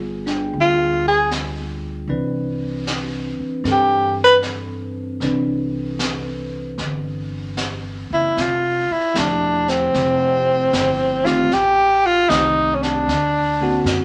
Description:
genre	jazz ballad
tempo	77 BPM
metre	4/4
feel	swing 67% on 8ths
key	C major, F major from 8.4 s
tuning	A4 = 441 Hz
part	bell-like tine electric piano	accompaniment	0.0-14.0 s	D3 to G5	-27 LUFS	equal	phaser
part	upright bass	bass	0.0-14.0 s	E1 to G2	-31 LUFS	equal	none
part	jazz brush drum kit	drums	0.3-14.0 s	brushed snare drum, hi-hat, snare drum	-30 LUFS	equal	none
part	breathy tenor saxophone	melody	0.6-14.0 s	C4 to B4	-18 LUFS	equal	none
room	moderate club reverb, RT60 0.9 s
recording	none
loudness	-19 LUFS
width	mono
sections	0.0-8.4 A section; 8.4-14.0 B section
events	tenor saxophone solo 0.0-8.4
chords	0.0 G7b9; 2.1 Cmaj9; 8.4 Fmaj9; 11.5 Am7b5; 13.1 Daug7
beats	0.53 1.31 | 2.09 2.87 3.65 4.43 | 5.21 6.00 6.79 7.58 | 8.37 9.15 9.94 10.72 | 11.50 12.28 13.06 13.85

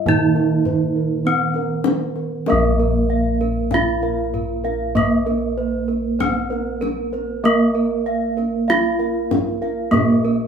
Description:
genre	Javanese gamelan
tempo	48 BPM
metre	4/4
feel	straight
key	Bb pelog barang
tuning	A4 = 440 Hz
part	gamelan-type bronze metallophone	melody	0.0-10.5 s	Bb3 to F4-40c	-21 LUFS	right 2 dB	none
part	gamelan-type bronze metallophone	accompaniment	0.0-10.5 s	Eb3+30c to Bb3	-23 LUFS	right 2 dB	none
part	gamelan-type bossed gongs	arpeggios	0.0-10.5 s	Bb4 to F5-40c	-27 LUFS	right 1 dB	none
part	gamelan-type bossed gongs	bass	0.0-10.5 s	Bb1 to Bb4	-25 LUFS	left 1 dB	none
part	kendang	percussion	0.1-10.4 s	none	-25 LUFS	left 3 dB	none
part	gamelan-type bronze metallophone	arpeggios	2.5-10.5 s	Bb4 to F5-40c	-28 LUFS	right 6 dB	none
room	moderate studio reverb, RT60 0.7 s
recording	band playing live in one room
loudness	-17 LUFS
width	side -7 dB against mid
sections	0.0-2.5 A section; 2.5-10.5 B section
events	none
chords	none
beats	0.07 1.26 | 2.48 3.72 4.96 6.20 | 7.44 8.68 9.93

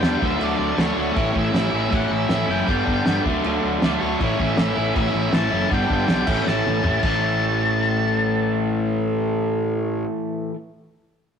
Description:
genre	garage rock duo or trio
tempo	159 BPM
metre	4/4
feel	straight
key	A mixolydian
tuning	A4 = 440 Hz
part	octave-fuzz lead guitar	melody	0.0-10.0 s	C#5 to A5	-26 LUFS	left 2 dB	distortion
part	overdriven electric guitar	riff	0.0-10.6 s	G2 to E4	-22 LUFS	equal	none
part	fuzz fingered electric bass	bass	0.0-10.0 s	F#1 to E2	-26 LUFS	equal	overdrive
part	cloth-damped thuddy drum kit	drums	0.0-7.1 s	crash cymbal, kick drum, snare drum, toms	-25 LUFS	equal	none
room	moderate stone room reverb, RT60 1.3 s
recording	rough rehearsal-room recording, warm saturation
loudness	-19 LUFS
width	side -7 dB against mid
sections	0.0-7.2 A section; 7.2-10.2 B section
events	drum fill 6.5-7.2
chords	0.2 D; 1.2 A; 2.7 G; 3.2 D; 4.2 A; 5.7 G; 6.3 A; 7.0 A5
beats	0.03 0.40 0.78 | 1.16 1.54 1.92 2.30 | 2.67 3.05 3.43 3.81 | 4.19 4.57 4.94 5.32 | 5.70 6.08 6.46 6.83 | 7.21 7.59 7.97 8.35 | 8.73 9.11 9.48 9.86

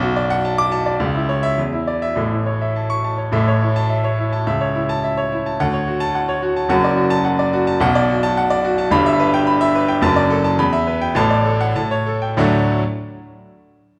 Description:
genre	classical, virtuoso piano study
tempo	98-110 BPM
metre	2/4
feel	rubato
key	A major, D major from 7.8 s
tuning	A4 = 440 Hz
part	warm baby grand piano	solo	0.0-12.8 s	F#1 to D6	-18 LUFS	equal	none
room	wet recital hall reverb, RT60 1.7 s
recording	none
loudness	-18 LUFS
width	mono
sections	0.0-3.3 A section; 3.3-12.4 B section; 12.4-13.6 C section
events	slowing down 9.5-12.4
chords	0.0 Bm7; 1.0 C#m; 1.6 Dsus2/E; 2.2 A; 4.5 A/C#; 5.6 Dmaj7; 6.7 D/F#; 7.8 Bm7; 8.9 Em/G; 10.0 D/F#; 10.6 Em; 11.2 D/A; 11.8 A7; 12.4 D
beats	0.43 | 1.00 1.58 | 2.17 2.75 | 3.34 3.91 | 4.47 5.04 | 5.60 6.15 | 6.70 7.25 | 7.81 8.36 | 8.91 9.47 | 10.03 10.59 | 11.17 11.76 | 12.37

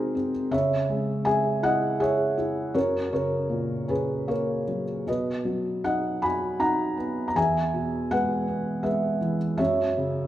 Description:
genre	classical, lyrical solo piano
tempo	80 BPM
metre	3/4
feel	rubato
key	B major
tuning	A4 = 438 Hz
part	felt-muted upright piano	solo	0.0-10.3 s	E2 to B5	-23 LUFS	equal	none
room	wet recital hall reverb, RT60 1.9 s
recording	recorded in a church or concert hall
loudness	-23 LUFS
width	side -13 dB against mid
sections	0.0-10.3 A section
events	none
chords	0.0 G#/B#; 0.5 C#m; 2.8 F#; 5.1 B; 7.4 E; 9.6 F#7(no3)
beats	| 0.53 1.27 2.01 | 2.75 3.51 4.28 | 5.08 5.85 6.62 | 7.37 8.12 8.85 | 9.59

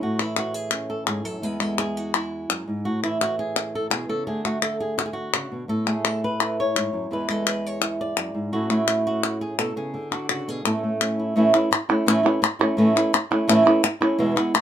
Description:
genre	flamenco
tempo	169 BPM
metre	4/4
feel	straight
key	A major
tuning	A4 = 439 Hz
part	flamenco guitar	melody	0.0-14.6 s	E2 to D5	-22 LUFS	right 1 dB	none
part	palmas hand claps	percussion	0.2-14.6 s	none	-23 LUFS	left 4 dB	none
room	moderate small room reverb, RT60 0.5 s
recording	minimal, uncompressed stereo recording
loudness	-21 LUFS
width	side -9 dB against mid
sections	0.0-11.4 A section; 11.4-14.6 B section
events	none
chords	0.0 A; 1.4 E; 2.9 A5; 4.3 D; 5.7 A; 7.1 E; 8.5 A; 9.9 Bm69; 10.7 A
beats	| 0.01 0.37 0.72 1.08 | 1.43 1.79 2.14 2.50 | 2.85 3.21 3.56 3.92 | 4.27 4.63 4.98 5.34 | 5.69 6.05 6.40 6.76 | 7.11 7.47 7.82 8.18 | 8.53 8.88 9.24 9.59 | 9.95 10.30 10.66 11.01 | 11.36 11.72 12.07 12.43 | 12.78 13.13 13.49 13.84 | 14.19 14.55

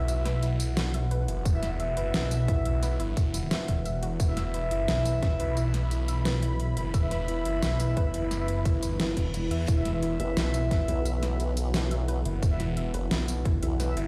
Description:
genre	dark technical drum and bass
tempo	175 BPM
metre	4/4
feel	straight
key	unclear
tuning	A4 = 440 Hz
part	dark analog pad	sustained chords	0.0-14.1 s	E4 to B5	-38 LUFS	equal	chorus, sidechain pumping
part	dark brass ensemble	stabs	0.0-14.0 s	E4 to E5	-37 LUFS	equal	dub echo
part	phased detuned saw bass	bass	0.0-14.1 s	E1 to E2	-31 LUFS	equal	phaser, tube saturation, sidechain pumping
part	soft round pluck	arpeggios	0.1-14.1 s	E4 to E5	-40 LUFS	equal	chorus, sidechain pumping, dub echo
part	dubstep drum kit	drums	0.1-14.0 s	hi-hat, snare drum, tambourine	-35 LUFS	equal	overdrive
part	electronic kick drum	drums	1.5-13.5 s	none	-28 LUFS	equal	none
part	reverse cymbal	sound effects	9.2-9.7 s	none	-46 LUFS	equal	none
part	formant-sweep wobble bass	bass	10.2-14.0 s	F#1 to B1	-30 LUFS	equal	chorus
room	light reverb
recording	played on a big sound system in a bare room, stone room reverb, faint mains hum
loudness	-28 LUFS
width	mono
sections	0.0-14.1 A section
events	reverse cymbal 9.2-9.7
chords	0.0 Em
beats	| 0.08 0.43 0.77 1.11 | 1.46 1.80 2.14 2.48 | 2.83 3.17 3.51 3.85 | 4.20 4.54 4.88 5.23 | 5.57 5.91 6.25 6.60 | 6.94 7.28 7.63 7.97 | 8.31 8.65 9.00 9.34 | 9.68 10.03 10.37 10.71 | 11.05 11.40 11.74 12.08 | 12.43 12.77 13.11 13.46 | 13.80

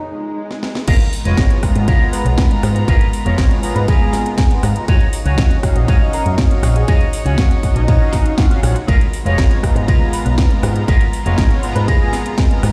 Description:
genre	nu-disco, nu disco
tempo	120 BPM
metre	4/4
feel	straight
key	G# dorian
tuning	A4 = 439 Hz
part	unison lead	melody	0.0-12.4 s	D#4 to B4	-29 LUFS	equal	vintage 12-bit sampler grit, dub echo
part	swell	sound effects	0.0-0.9 s	none	-35 LUFS	equal	none
part	house drum kit	drums	0.5-12.7 s	crash cymbal, hi-hat, ride cymbal, rim click, snare drum	-28 LUFS	equal	none
part	mellow synth brass	accompaniment	0.9-12.7 s	G#3 to A#5	-26 LUFS	equal	chorus, sidechain pumping, digital delay
part	warm studio string section	sustained chords	0.9-12.7 s	G#3 to A#5	-31 LUFS	equal	sidechain pumping
part	electric guitar with an envelope filter	riff	0.9-12.7 s	F#4 to G#5	-29 LUFS	equal	analog chorus, digital delay
part	picked electric bass with an envelope filter	bass	0.9-12.7 s	E#1 to G#2	-19 LUFS	equal	sidechain pumping
part	electronic kick drum	drums	0.9-12.5 s	none	-16 LUFS	equal	none
room	digital ambience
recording	played on a big sound system in a bare room, stone room reverb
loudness	-15 LUFS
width	mono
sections	0.9-12.7 A section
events	break 0.0-0.9; swell 0.0-0.9; drum fill 0.5-0.9; drop 0.9-12.7; clean electric guitar fill 4.1-4.9, 8.1-8.9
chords	0.0 N.C.; 0.9 G#m69; 4.9 D#m9; 8.9 G#m69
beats	0.38 | 0.88 1.38 1.88 2.38 | 2.88 3.38 3.88 4.38 | 4.88 5.38 5.88 6.38 | 6.88 7.38 7.88 8.38 | 8.88 9.38 9.88 10.38 | 10.88 11.38 11.88 12.38

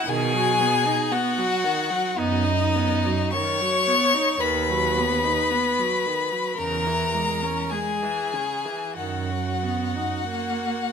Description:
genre	classical, slow romantic movement for string quartet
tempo	45-59 BPM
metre	4/4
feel	rubato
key	B major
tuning	A4 = 440 Hz
part	rich violin	melody	0.0-10.9 s	D#5 to C#6	-25 LUFS	left 7 dB	none
part	rich violin	second line	0.0-10.9 s	D#4 to C#5	-27 LUFS	left 2 dB	none
part	clear viola	accompaniment	0.0-10.9 s	C#3 to D#4	-28 LUFS	right 5 dB	none
part	rich cello	bass	0.1-10.1 s	D#2 to B2	-28 LUFS	right 6 dB	none
room	moderate recital hall reverb, RT60 1.4 s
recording	close, detailed microphones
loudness	-21 LUFS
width	side -6 dB against mid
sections	0.0-10.9 A section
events	none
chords	0.1 B; 4.4 B/D#; 6.6 C#m/E; 9.0 B/F#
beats	| 0.08 1.11 2.19 3.33 | 4.41 5.50 6.58 7.71 | 8.97 10.28

